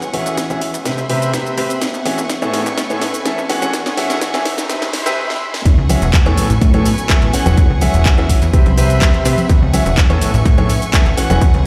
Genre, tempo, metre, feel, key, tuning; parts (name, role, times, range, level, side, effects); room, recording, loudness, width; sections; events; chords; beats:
piano house; 125 BPM; 4/4; straight; E major; A4 = 438 Hz
clear studio string section; sustained chords; 0.0-11.7 s; G#4 to C#6; -30 LUFS; equal; sidechain pumping
plucky analog bass; bass; 0.0-11.7 s; E1 to C3; -19 LUFS; equal; tube saturation, sidechain pumping, high-pass filter
house drum kit; drums; 0.0-11.6 s; cabasa, handclaps, hi-hat, snare drum; -24 LUFS; equal
riser; sound effects; 0.0-5.2 s; -33 LUFS; equal
warbly tape-like pad; texture; 0.0-11.7 s; B3 to G#5; -30 LUFS; equal
clear baby grand piano; riff; 0.1-11.5 s; A2 to F#5; -22 LUFS; equal; sidechain pumping, low-pass filter, tape echo
electronic kick drum; drums; 0.4-11.5 s; -16 LUFS; equal; high-pass filter on kick
tambourine and congas; percussion; 5.7-11.5 s; -26 LUFS; equal
light reverb; played on a big sound system in a bare room, stone room reverb, high-pass filter; -15 LUFS; mono
0.0-5.7 A section; 5.7-11.7 B section
build-up 0.0-5.7; drum fill 0.0-5.2, 5.3-5.7; filter sweep on grand piano 0.0-5.7; drop 5.7-11.7
0.0 E69; 0.9 Cmaj7; 1.8 E69; 2.5 Amaj9; 3.5 E69; 4.7 Cmaj7; 5.7 E69; 6.4 Amaj9; 7.3 E69; 8.5 Cmaj7; 9.5 E69; 10.2 Amaj9
0.38 0.85 1.33 | 1.81 2.29 2.77 3.25 | 3.73 4.21 4.70 5.17 | 5.66 6.13 6.62 7.09 | 7.58 8.05 8.54 9.02 | 9.49 9.97 10.46 10.94 | 11.41